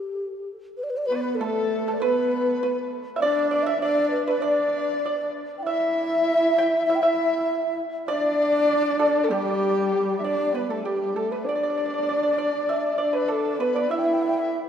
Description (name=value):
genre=chinese traditional, Chinese chamber ensemble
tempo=98 BPM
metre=2/4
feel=rubato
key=unclear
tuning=A4 = 440 Hz
part: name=mellow hollow low xiao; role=melody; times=0.0-14.6 s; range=G4 to G5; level=-25 LUFS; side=left 1 dB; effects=none
part: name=dark horsehead fiddle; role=second line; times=1.1-14.5 s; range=G3 to E4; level=-27 LUFS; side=right 2 dB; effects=none
part: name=large dizi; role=second line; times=1.1-14.6 s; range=G4 to G5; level=-28 LUFS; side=left 4 dB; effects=none
part: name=pipa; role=second line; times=1.1-14.5 s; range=G4 to G5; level=-30 LUFS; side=right 5 dB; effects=none
room=wet cathedral reverb, RT60 4.5 s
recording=recorded in a church or concert hall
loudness=-21 LUFS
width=side -8 dB against mid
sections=0.8-10.5 A section; 10.5-14.7 B section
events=none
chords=none